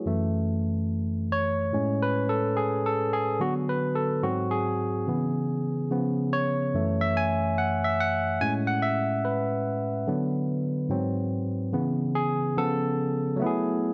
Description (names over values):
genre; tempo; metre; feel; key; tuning
R&B; 72 BPM; 4/4; swing 63% on 16ths; F# minor; A4 = 441 Hz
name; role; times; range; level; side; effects
barky tine electric piano; solo; 0.0-13.9 s; F#2 to G#5; -27 LUFS; equal; none
room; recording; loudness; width
moderate echo chamber reverb, RT60 2.6 s; dark, warm production; -27 LUFS; mono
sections
0.1-13.4 A section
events
tine electric piano solo 0.1-13.4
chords
0.1 F#m7; 1.7 Amaj7; 3.4 D6; 4.2 G#7; 5.1 C#m7; 5.9 C#7; 6.7 F#m7; 8.4 Amaj9; 10.1 D6; 10.9 G#7#9; 11.7 C#m7; 12.6 C#7b13; 13.4 F#m11